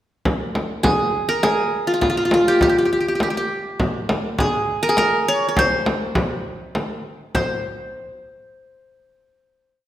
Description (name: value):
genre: Arabic maqam ensemble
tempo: 101 BPM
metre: 3/4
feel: straight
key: unclear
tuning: A4 = 440 Hz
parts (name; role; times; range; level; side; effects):
- frame drum; percussion; 0.3-7.6 s; none; -22 LUFS; equal; none
- qanun; melody; 0.8-7.6 s; F4 to Db5+25c; -19 LUFS; equal; none
room: wet recital hall reverb, RT60 1.6 s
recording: none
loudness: -18 LUFS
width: side -12 dB against mid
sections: 0.2-7.3 A section; 7.3-9.1 final note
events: none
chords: none